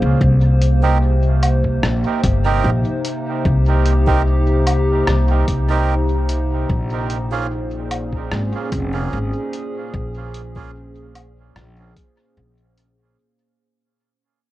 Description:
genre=ambient dub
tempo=74 BPM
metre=4/4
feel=swing 53% on 16ths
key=Bb dorian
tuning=A4 = 441 Hz
part: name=warbly tape-like pad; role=sustained chords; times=0.0-13.2 s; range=Bb2 to C5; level=-23 LUFS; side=equal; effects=chorus, built-in reverb
part: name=upright bass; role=bass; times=0.0-13.1 s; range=F1 to Db2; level=-17 LUFS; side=equal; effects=none
part: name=electronic kick drum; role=drums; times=0.2-12.1 s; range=none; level=-22 LUFS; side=equal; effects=cassette tape
part: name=lo-fi sampler-style drum kit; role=drums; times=0.6-12.9 s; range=hi-hat, rim click, woodblock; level=-26 LUFS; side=equal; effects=cassette tape, dub echo
part: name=melodica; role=stabs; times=0.8-10.7 s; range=Bb3 to Bb4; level=-25 LUFS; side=right 7 dB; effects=dub echo
room=little or no reverb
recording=home recording on cassette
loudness=-16 LUFS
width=side -16 dB against mid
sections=0.0-13.2 A section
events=fade-out 4.5-13.2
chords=0.2 Cm7; 6.7 Bbm7

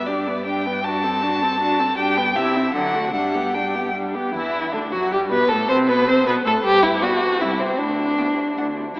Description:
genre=quick classical-period movement for string quartet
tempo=155 BPM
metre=3/4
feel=straight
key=G major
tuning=A4 = 440 Hz
part: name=rich violin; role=melody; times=0.0-8.7 s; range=D4 to A5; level=-24 LUFS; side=left 1 dB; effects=none
part: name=warm violin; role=second line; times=0.0-9.0 s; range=C4 to C5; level=-20 LUFS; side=equal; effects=none
part: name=warm viola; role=accompaniment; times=0.0-8.7 s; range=D3 to E4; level=-25 LUFS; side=equal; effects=none
part: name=warm cello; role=bass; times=0.0-9.0 s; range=C2 to D3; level=-28 LUFS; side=right 1 dB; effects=none
room=wet cathedral reverb, RT60 6.0 s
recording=in a vast, echoing space, AM radio sound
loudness=-17 LUFS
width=side -25 dB against mid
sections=0.0-4.3 A section; 4.3-9.0 B section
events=none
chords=0.0 G; 0.8 D7/G; 2.0 G; 2.4 C; 2.8 D; 3.1 G; 5.5 Amadd9; 6.6 N.C.; 7.4 C; 7.8 N.C.

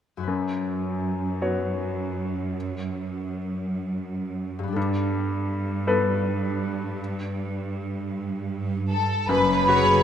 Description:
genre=cinematic, emotional film score for orchestra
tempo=53 BPM (dotted quarters)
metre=6/8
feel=rubato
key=unclear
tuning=A4 = 442 Hz
part: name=concert harp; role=arpeggios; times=0.2-10.0 s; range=F#2 to B4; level=-33 LUFS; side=left 6 dB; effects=none
part: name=bright grand piano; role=accompaniment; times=0.3-10.0 s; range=F#2 to C#5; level=-27 LUFS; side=left 3 dB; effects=none
part: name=rich symphonic cello section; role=bass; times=0.3-10.0 s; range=F#2 to G2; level=-28 LUFS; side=right 3 dB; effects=none
part: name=rich studio violin section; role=melody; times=8.9-10.0 s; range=A4 to B4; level=-28 LUFS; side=equal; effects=none
part: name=mellow large flute ensemble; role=second line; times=8.9-10.0 s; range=A5 to B5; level=-21 LUFS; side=equal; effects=none
part: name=clear studio violin section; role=second line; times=9.3-10.0 s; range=B4 to C#5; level=-25 LUFS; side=equal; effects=none
part: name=rich studio double bass section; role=bass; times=9.3-10.0 s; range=F#1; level=-31 LUFS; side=right 4 dB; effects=none
part: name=warm studio viola section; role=accompaniment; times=9.7-10.0 s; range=C#3 to F#4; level=-26 LUFS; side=right 1 dB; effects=none
room=moderate scoring stage reverb, RT60 1.9 s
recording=none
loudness=-24 LUFS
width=side -9 dB against mid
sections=0.3-9.3 A section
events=none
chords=0.3 F#sus4; 4.8 Gadd9; 9.3 F#sus4

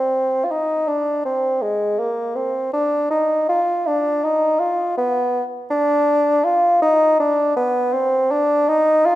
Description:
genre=classical, baroque-style fantasia for unaccompanied bassoon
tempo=81 BPM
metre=4/4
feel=rubato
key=unclear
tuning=A4 = 440 Hz
part: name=mellow bassoon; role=solo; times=0.0-9.2 s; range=Ab3 to F4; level=-16 LUFS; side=equal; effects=none
room=wet recital hall reverb, RT60 1.5 s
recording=none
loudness=-16 LUFS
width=side -15 dB against mid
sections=0.0-9.2 A section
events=none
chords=none

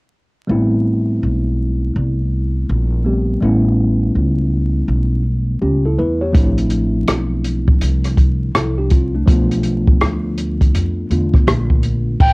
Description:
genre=hip hop, jazz-hop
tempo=82 BPM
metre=4/4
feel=swing 64% on 16ths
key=A minor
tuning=A4 = 440 Hz
part: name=mellow tine electric piano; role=accompaniment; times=0.5-12.2 s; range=D3 to C#5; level=-19 LUFS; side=equal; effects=medium stereo tremolo, cassette tape
part: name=upright bass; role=bass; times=0.5-12.3 s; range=A1 to F2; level=-18 LUFS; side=equal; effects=none
part: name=open jazz drum kit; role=drums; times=6.3-12.3 s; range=crash cymbal, hi-hat, kick drum, rim click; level=-14 LUFS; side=equal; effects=cassette tape
part: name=silver concert flute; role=melody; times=12.2-12.3 s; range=G5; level=-13 LUFS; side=equal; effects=cassette tape
room=light reverb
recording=home recording on cassette, vinyl crackle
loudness=-14 LUFS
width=side -27 dB against mid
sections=0.5-12.2 A section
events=none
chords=0.5 Am9; 3.4 A7; 6.3 Dm9/A; 9.3 Bm7b5

